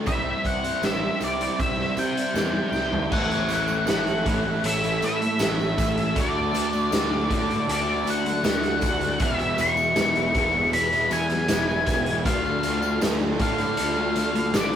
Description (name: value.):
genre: rock, shoegaze and dream pop.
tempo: 79 BPM.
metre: 4/4.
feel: straight.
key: unclear.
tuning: A4 = 439 Hz.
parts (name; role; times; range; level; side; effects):
string machine, violins; sustained chords; 0.0-14.8 s; F4 to C6; -34 LUFS; equal; ensemble chorus.
biting overdriven guitar; riff; 0.0-14.8 s; E2 to F#4; -32 LUFS; right 4 dB; none.
cranked stack guitar; riff; 0.0-14.8 s; E2 to D4; -32 LUFS; right 2 dB; overdrive.
thick fuzz guitar; riff; 0.0-14.8 s; E2 to D4; -32 LUFS; left 5 dB; distortion.
octave-fuzz lead guitar; melody; 0.1-14.8 s; D5 to C#6; -26 LUFS; left 2 dB; distortion, slapback echo.
fuzz picked electric bass; bass; 0.1-14.8 s; E1 to C3; -30 LUFS; right 1 dB; overdrive.
raw garage drum kit; drums; 0.1-14.8 s; crash cymbal, hi-hat, kick drum, snare drum, toms; -27 LUFS; equal; none.
tambourine; percussion; 0.1-14.8 s; none; -42 LUFS; right 6 dB; none.
room: wet small room reverb, RT60 0.5 s.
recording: rough rehearsal-room recording.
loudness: -21 LUFS.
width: side -9 dB against mid.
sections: 0.0-3.1 A section; 3.1-14.8 B section.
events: drum fill 2.7-3.1.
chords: 0.1 Cadd9; 3.1 Aadd9; 6.2 Dadd9; 9.2 E; 12.3 Dm.